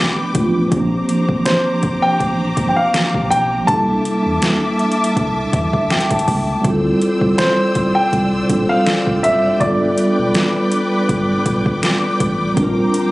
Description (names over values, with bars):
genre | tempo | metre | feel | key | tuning
contemporary R&B | 81 BPM | 4/4 | swing 54% on 16ths | unclear | A4 = 439 Hz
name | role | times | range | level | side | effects
mellow tine electric piano | accompaniment | 0.0-13.1 s | F3 to A5 | -18 LUFS | equal | medium stereo tremolo
rich symphonic string section | sustained chords | 0.0-13.1 s | Bb3 to E6 | -23 LUFS | left 1 dB | none
smooth R&B drum kit | drums | 0.3-13.1 s | hi-hat, kick drum, snare drum | -20 LUFS | equal | overdrive
sub bass with octave | bass | 0.4-12.9 s | F#1 to E2 | -23 LUFS | equal | none
dark grand piano | melody | 1.5-11.8 s | C5 to A5 | -18 LUFS | equal | tape echo
room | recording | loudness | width
little or no reverb | recorded on a phone in the room, club reverb, compression, nothing above 11.0 kHz | -14 LUFS | side -19 dB against mid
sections
0.0-13.1 A section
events
tine electric piano fill 5.2-6.6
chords
0.0 G7; 0.7 Bb69; 3.7 C13; 6.6 Dm11; 9.6 G7; 12.6 Bb69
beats
| 0.72 1.46 2.20 2.94 | 3.68 4.42 5.16 5.90 | 6.64 7.38 8.13 8.87 | 9.61 10.35 11.09 11.83 | 12.57